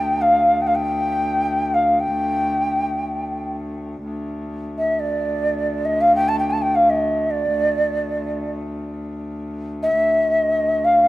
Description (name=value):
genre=Arabic maqam ensemble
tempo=free time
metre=none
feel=none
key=D maqam bayati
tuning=A4 = 440 Hz
part: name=breathy ney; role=melody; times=0.0-11.1 s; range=D5 to A5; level=-18 LUFS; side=equal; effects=none
part: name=rich cello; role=drone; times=0.0-11.1 s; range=D2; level=-26 LUFS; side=left 1 dB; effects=none
room=moderate plate reverb, RT60 3.0 s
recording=rough home demo mix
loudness=-18 LUFS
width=side -16 dB against mid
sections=0.0-11.1 A section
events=none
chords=none